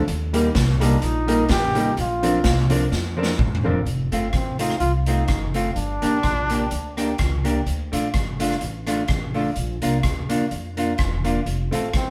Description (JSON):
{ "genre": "ska", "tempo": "126 BPM", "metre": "4/4", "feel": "swing 54% on 8ths", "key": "F mixolydian", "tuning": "A4 = 441 Hz", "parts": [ { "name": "upright bass", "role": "bass", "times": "0.1-12.1 s", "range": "E1 to F2", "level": "-27 LUFS", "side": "equal", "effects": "none" }, { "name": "street-band drum kit", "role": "drums", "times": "0.1-12.1 s", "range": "hi-hat, kick drum, rim click, snare drum, toms", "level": "-27 LUFS", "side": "equal", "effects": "none" }, { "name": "hollow-body jazz guitar", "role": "accompaniment", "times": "0.3-11.9 s", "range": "F3 to G4", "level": "-27 LUFS", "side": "equal", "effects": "none" }, { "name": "dark upright piano", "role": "stabs", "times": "0.3-3.8, 11.7-11.9 s", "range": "A3 to Bb4", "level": "-30 LUFS", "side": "equal", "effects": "none" }, { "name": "clear trombone", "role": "melody", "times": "0.8-7.1, 12.0-12.1 s", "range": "C4 to G4", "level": "-27 LUFS", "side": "equal", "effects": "none" } ], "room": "moderate stone room reverb, RT60 1.2 s", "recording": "band playing live in one room", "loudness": "-22 LUFS", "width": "mono", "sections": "0.0-3.9 A section; 3.9-12.1 B section", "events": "drum fill 2.9-3.9", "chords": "0.1 Eb; 2.0 Bbadd9; 3.9 F; 5.8 Gm; 7.7 Dm; 9.6 Bb; 11.5 F" }